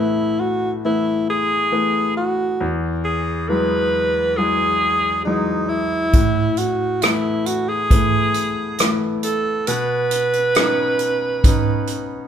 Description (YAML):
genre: pop ballad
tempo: 68 BPM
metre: 4/4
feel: straight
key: unclear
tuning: A4 = 439 Hz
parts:
  - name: bright alto saxophone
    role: melody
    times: 0.0-12.3 s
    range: D#4 to B4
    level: -20 LUFS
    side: right 2 dB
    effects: none
  - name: bright concert grand piano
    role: accompaniment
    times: 0.0-12.3 s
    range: E2 to D#4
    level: -22 LUFS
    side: left 3 dB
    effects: none
  - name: unplugged drum kit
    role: drums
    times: 6.1-12.1 s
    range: hi-hat, kick drum, rim click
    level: -18 LUFS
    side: right 2 dB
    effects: none
room: light reverb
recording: band playing live in one room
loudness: -17 LUFS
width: side -8 dB against mid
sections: 0.0-12.3 A section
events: grand piano fill 11.9-12.3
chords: 0.0 Asus2; 2.6 Eadd9; 6.1 Asus2; 9.7 Badd9